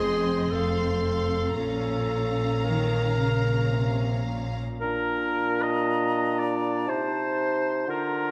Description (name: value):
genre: classical, slow romantic movement for symphony orchestra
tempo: 54-61 BPM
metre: 3/4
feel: rubato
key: Bb minor, Bb major from 4.8 s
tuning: A4 = 441 Hz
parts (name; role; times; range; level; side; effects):
- rich studio violin section; melody; 0.0-4.6 s; Bb5 to C6; -39 LUFS; equal; none
- bright clarinet; second line; 0.0-8.3 s; D4 to Bb4; -32 LUFS; equal; none
- rich symphonic violin section; second line; 0.0-4.5 s; Eb5 to F5; -41 LUFS; equal; none
- rich chamber viola section; accompaniment; 0.0-4.5 s; C4 to Db4; -37 LUFS; equal; none
- clear chamber double bass section; bass; 0.0-4.5 s; F1 to Bb1; -31 LUFS; equal; none
- warm chamber cello section; bass; 0.0-4.8 s; F2 to Eb3; -34 LUFS; equal; none
- clear oboe; second line; 4.8-8.3 s; Bb4 to Eb5; -30 LUFS; equal; none
- silver concert flute; second line; 4.8-8.3 s; A5 to Bb5; -35 LUFS; equal; none
- clear bassoon; accompaniment; 4.8-8.3 s; Bb2 to D3; -31 LUFS; equal; none
room: moderate scoring stage reverb, RT60 1.9 s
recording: none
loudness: -26 LUFS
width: mono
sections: 0.0-4.8 A section; 4.8-8.3 B section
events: none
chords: 0.0 N.C.; 1.6 Bbm; 4.8 Bb; 6.9 Adim/C